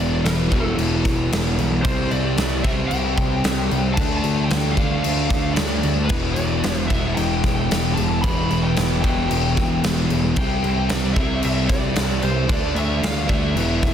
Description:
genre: hard rock.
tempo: 113 BPM.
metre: 4/4.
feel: straight.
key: E phrygian.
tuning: A4 = 439 Hz.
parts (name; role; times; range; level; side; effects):
lead guitar through a small cranked amp; melody; 0.0-13.9 s; B4 to B5; -28 LUFS; equal; overdrive, digital delay.
overdriven electric guitar; riff; 0.0-13.9 s; E2 to D4; -22 LUFS; equal; none.
fuzz picked electric bass; bass; 0.0-13.9 s; E1 to D2; -24 LUFS; equal; overdrive.
big rock drum kit; drums; 0.3-13.9 s; crash cymbal, kick drum, snare drum; -23 LUFS; equal; soft clipping on kick.
room: small room ambience.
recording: dense, heavily limited modern master.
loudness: -18 LUFS.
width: side -9 dB against mid.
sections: 0.0-13.9 A section.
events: none.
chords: 0.0 E5; 1.8 C5; 4.0 Dm; 6.1 Em; 10.4 C5; 12.5 D5.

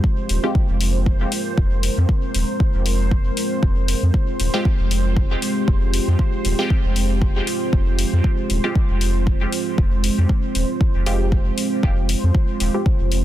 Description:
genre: dub techno.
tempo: 117 BPM.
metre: 4/4.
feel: swing 55% on 16ths.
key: F minor.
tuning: A4 = 439 Hz.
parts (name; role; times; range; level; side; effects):
deep dark ambient pad; sustained chords; 0.0-13.2 s; Ab3 to C5; -25 LUFS; right 2 dB; chorus, built-in reverb, sidechain pumping.
electronic kick drum; drums; 0.0-13.0 s; none; -18 LUFS; equal; none.
bubbling stepped-filter texture; texture; 0.0-13.2 s; C5; -32 LUFS; right 1 dB; chorus, built-in reverb, sidechain pumping.
soft dub sub bass; bass; 0.3-13.2 s; Eb1 to F2; -20 LUFS; equal; sidechain pumping.
electronic hi-hat; drums; 0.3-13.2 s; none; -27 LUFS; left 4 dB; overdrive.
filtered dub chord stab; stabs; 0.4-0.6, 4.5-12.9 s; Ab3 to G4; -28 LUFS; equal; chorus, phaser, cassette tape, sidechain pumping, dub echo.
room: digital ambience.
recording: dense, heavily limited modern master.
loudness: -17 LUFS.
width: side -13 dB against mid.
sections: 0.0-13.2 A section.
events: none.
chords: 0.0 Fmadd9.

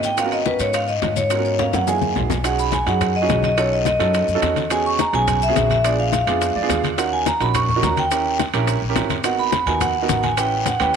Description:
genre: Afro-Cuban jazz.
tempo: 212 BPM.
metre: 4/4.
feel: straight.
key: B major.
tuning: A4 = 440 Hz.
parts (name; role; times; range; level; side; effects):
vibraphone with medium hard mallets; melody; 0.0-11.0 s; B4 to C#6; -20 LUFS; equal; none.
warm baby grand piano; accompaniment; 0.0-10.9 s; A#3 to E#5; -24 LUFS; right 11 dB; none.
upright bass; bass; 0.0-11.0 s; G#1 to G#2; -24 LUFS; left 1 dB; none.
bongos; percussion; 0.0-10.9 s; none; -29 LUFS; left 14 dB; none.
congas; percussion; 0.0-10.9 s; none; -28 LUFS; left 10 dB; none.
guiro; percussion; 0.0-10.9 s; none; -33 LUFS; left 15 dB; none.
maracas; percussion; 0.0-10.9 s; none; -35 LUFS; left 16 dB; none.
timbales; percussion; 0.2-10.9 s; none; -28 LUFS; right 13 dB; none.
room: moderate plate reverb, RT60 2.6 s.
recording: 1960s-style stereo with parts hard left and right.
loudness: -17 LUFS.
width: side -7 dB against mid.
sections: 0.0-2.4 A section; 2.4-11.0 B section.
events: drum fill 1.6-2.4; grand piano fill 6.4-7.0.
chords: 0.2 G#m11; 1.9 F#13; 2.4 B6; 3.6 B9; 4.7 E6; 5.8 A#7b9; 7.0 D#m7; 8.1 D#7b9; 9.2 G#m7; 10.4 A9.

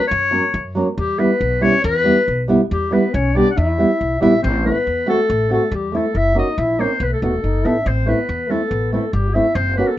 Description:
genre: klezmer.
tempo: 140 BPM.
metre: 2/4.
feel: straight.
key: E dorian sharp4, A dorian sharp4 from 4.4 s.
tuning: A4 = 440 Hz.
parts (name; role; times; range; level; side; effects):
clear clarinet; melody; 0.0-10.0 s; G4 to F#5; -20 LUFS; left 2 dB; none.
upright bass; bass; 0.1-9.8 s; D#1 to F#2; -21 LUFS; equal; none.
nylon-string guitar; accompaniment; 0.3-9.9 s; F#3 to A4; -17 LUFS; right 2 dB; none.
breathy trombone; second line; 1.0-10.0 s; G3 to F#4; -25 LUFS; left 3 dB; none.
room: moderate studio ambience, RT60 0.5 s.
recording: rough home demo mix, nothing above 7.6 kHz.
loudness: -15 LUFS.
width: side -13 dB against mid.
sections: 0.0-4.4 A section; 4.4-10.0 B section.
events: speeding up 0.0-10.0.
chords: 0.0 F#; 1.0 Em; 4.4 Am; 6.2 F#; 7.0 B; 7.9 Am.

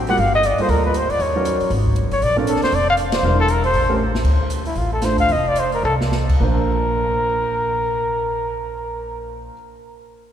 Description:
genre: jazz, small-group swing and bop.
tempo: 200-236 BPM.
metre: 4/4.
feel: swing 60% on 8ths.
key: Bb major.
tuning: A4 = 440 Hz.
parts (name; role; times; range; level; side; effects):
upright bass; bass; 0.0-9.5 s; E1 to Eb2; -22 LUFS; equal; none.
breathy trumpet; melody; 0.1-9.5 s; E4 to F#5; -20 LUFS; left 1 dB; none.
warm concert grand piano; accompaniment; 0.1-9.5 s; Bb2 to C5; -25 LUFS; right 3 dB; none.
open jazz drum kit; drums; 0.1-6.3 s; crash cymbal, hi-hat, kick drum, ride cymbal, snare drum; -26 LUFS; equal; none.
room: wet cathedral reverb, RT60 4.2 s.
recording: recorded in a church or concert hall.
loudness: -16 LUFS.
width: side -10 dB against mid.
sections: 0.0-4.2 A section; 4.2-6.4 B section; 6.4-8.8 C section.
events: band accent 3.1; drum fill 4.0, 5.8; slowing down 4.2-6.4.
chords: 0.2 Gm9; 1.2 Ebm7; 1.7 N.C.; 2.2 Bbmaj9; 3.2 Em7b5; 3.7 A7b9; 4.2 Dm7; 5.3 F5; 6.4 Bbadd9.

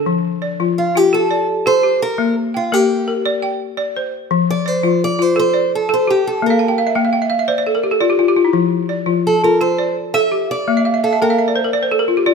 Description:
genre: west african traditional, West African string and xylophone music.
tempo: 113 BPM (dotted quarters).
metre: 12/8.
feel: straight.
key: F major.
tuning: A4 = 435 Hz.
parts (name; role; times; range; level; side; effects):
balafon; arpeggios; 0.0-12.3 s; F3 to A5; -16 LUFS; left 2 dB; none.
picked acoustic archtop guitar; melody; 0.8-11.6 s; F4 to E5; -18 LUFS; right 1 dB; none.
room: moderate recital hall reverb, RT60 1.6 s.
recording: close, detailed microphones.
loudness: -14 LUFS.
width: side -5 dB against mid.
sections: 0.1-12.3 A section.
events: balafon fill 6.5-8.6, 10.8-12.3.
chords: 0.1 F; 2.2 Bb; 4.3 F; 6.4 Bb; 8.6 F; 10.7 Bb.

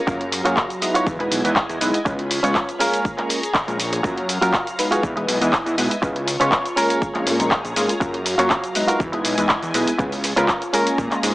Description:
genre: filtered disco house.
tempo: 121 BPM.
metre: 4/4.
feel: straight.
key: F# major.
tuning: A4 = 441 Hz.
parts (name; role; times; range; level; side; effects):
string machine, full ensemble; sustained chords; 0.0-11.3 s; F#3 to B5; -28 LUFS; equal; ensemble chorus, vintage 12-bit sampler grit, sidechain pumping, low-pass filter.
funky polysynth comp; accompaniment; 0.1-11.3 s; F#3 to B4; -23 LUFS; equal; chorus, phaser, sidechain pumping, low-pass filter.
direct-recorded clean electric guitar; riff; 0.1-11.3 s; C#4 to C#5; -22 LUFS; right 1 dB; sidechain pumping, low-pass filter.
fat analog bass; bass; 0.1-11.3 s; E1 to A#2; -25 LUFS; equal; sidechain pumping, low-pass filter.
electronic kick drum; drums; 0.1-11.1 s; none; -25 LUFS; equal; none.
house drum kit; drums; 0.1-11.3 s; handclaps, hi-hat, shaker; -23 LUFS; equal; sidechain pumping on hats, sidechain pumping on perc, sidechain pumping on cymbals.
tambourine; percussion; 0.1-11.3 s; none; -37 LUFS; left 1 dB; none.
room: moderate plate reverb, RT60 1.2 s, digital ambience.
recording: small speaker sound.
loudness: -18 LUFS.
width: side -18 dB against mid.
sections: 0.0-11.3 A section.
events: none.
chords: 0.1 F#maj7; 1.1 Emaj7; 2.1 C#7; 2.8 A#m7; 4.0 F#maj7; 5.0 Emaj7; 6.0 C#7; 6.8 A#m7; 8.0 F#maj7; 9.0 Emaj7; 10.0 C#7; 10.7 A#m7.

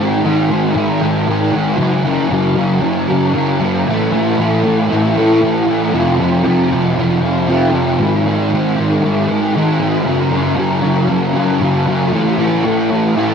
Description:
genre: rock.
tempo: 116 BPM.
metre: 4/4.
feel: straight.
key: unclear.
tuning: A4 = 444 Hz.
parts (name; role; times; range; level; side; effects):
fuzz guitar; solo; 0.0-13.3 s; F2 to A3; -12 LUFS; equal; distortion, ensemble chorus, ping-pong delay.
room: wet lush hall reverb, RT60 2.5 s.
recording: dreamy mix soaked in reverb.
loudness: -12 LUFS.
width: side -6 dB against mid.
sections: 0.0-13.3 A section.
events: none.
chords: 0.0 Ab5; 1.8 Gb5; 3.9 A5; 5.9 F5; 8.0 Ab5; 10.1 Gb5; 12.1 A5.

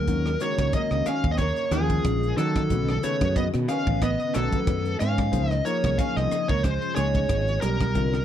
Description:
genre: electric jazz fusion.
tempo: 92 BPM.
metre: 4/4.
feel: swing 55% on 16ths.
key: unclear.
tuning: A4 = 440 Hz.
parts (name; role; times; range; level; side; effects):
smooth overdriven lead guitar; melody; 0.0-8.2 s; Ab4 to F5; -28 LUFS; left 1 dB; slapback echo.
archtop guitar, miked and amplified; second line; 0.0-8.2 s; F3 to Db4; -32 LUFS; right 8 dB; none.
phased string machine; sustained chords; 0.0-8.2 s; Db3 to Ab5; -34 LUFS; equal; ensemble chorus, phaser.
fretless electric bass; bass; 0.0-8.2 s; Ab1 to Eb3; -26 LUFS; equal; none.
barky tine electric piano; accompaniment; 0.1-8.2 s; D3 to Gb5; -31 LUFS; left 8 dB; phaser.
crisp fusion drum kit; drums; 0.1-8.2 s; hi-hat, kick drum, rim click; -29 LUFS; equal; none.
room: studio reverb.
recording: none.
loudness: -22 LUFS.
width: side -10 dB against mid.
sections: 0.0-8.2 A section.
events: none.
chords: 0.1 Ebm9; 2.7 B9; 5.3 Dbmaj9.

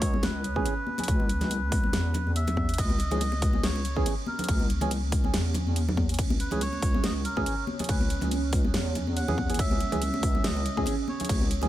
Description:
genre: deep dubstep.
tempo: 141 BPM.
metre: 4/4.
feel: swing 55% on 16ths, half-time.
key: C# dorian.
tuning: A4 = 439 Hz.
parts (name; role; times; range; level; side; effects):
melodica; melody; 0.0-11.5 s; A#4 to F#5; -35 LUFS; equal; dub echo.
dark analog pad; sustained chords; 0.0-11.7 s; C#4; -37 LUFS; right 5 dB; chorus, phaser.
deep soft wobble bass; bass; 0.0-11.7 s; C#2 to E2; -29 LUFS; equal; chorus.
dubstep drum kit; drums; 0.0-11.7 s; crash cymbal, hi-hat, snare drum; -34 LUFS; right 1 dB; none.
electronic kick drum; drums; 0.0-11.4 s; none; -28 LUFS; equal; none.
congas; percussion; 0.1-11.7 s; none; -34 LUFS; left 2 dB; none.
percussive organ stab; stabs; 0.6-11.7 s; E3 to G#4; -36 LUFS; right 2 dB; chorus, dub echo.
room: digital ambience.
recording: none.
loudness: -24 LUFS.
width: side -13 dB against mid.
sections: 0.0-11.7 A section.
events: none.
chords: 0.0 C#m.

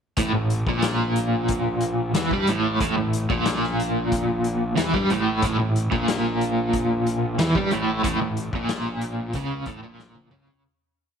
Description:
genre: psychedelic rock.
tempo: 92 BPM.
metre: 4/4.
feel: straight.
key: unclear.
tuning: A4 = 438 Hz.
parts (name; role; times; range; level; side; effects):
overdriven semi-hollow guitar; riff; 0.2-10.6 s; A2 to G3; -22 LUFS; right 1 dB; tremolo.
fuzz picked electric bass; bass; 0.2-10.6 s; A1 to G2; -31 LUFS; equal; overdrive.
vintage drum kit; drums; 0.2-10.6 s; hi-hat, kick drum, snare drum, toms; -29 LUFS; left 3 dB; none.
room: moderate echo chamber reverb, RT60 2.0 s, small room ambience.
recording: 1960s-style stereo.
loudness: -21 LUFS.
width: side -7 dB against mid.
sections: 0.2-10.6 riff.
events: fade-out 8.0-10.6; drum fill 10.0-10.6.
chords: none.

